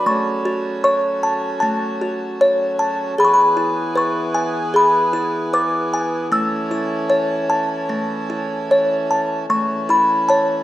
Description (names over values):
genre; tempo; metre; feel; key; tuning
children's music, lullaby; 77 BPM; 4/4; straight; A major; A4 = 440 Hz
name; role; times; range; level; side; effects
music box; melody; 0.0-10.6 s; A3 to E6; -17 LUFS; left 1 dB; none
hand-pumped harmonium; sustained chords; 0.0-10.6 s; E3 to A4; -24 LUFS; right 1 dB; none
room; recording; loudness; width
wet recital hall reverb, RT60 1.4 s; none; -16 LUFS; side -14 dB against mid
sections
0.0-9.5 A section; 9.5-10.6 B section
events
none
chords
0.1 F#m; 3.2 E; 6.3 A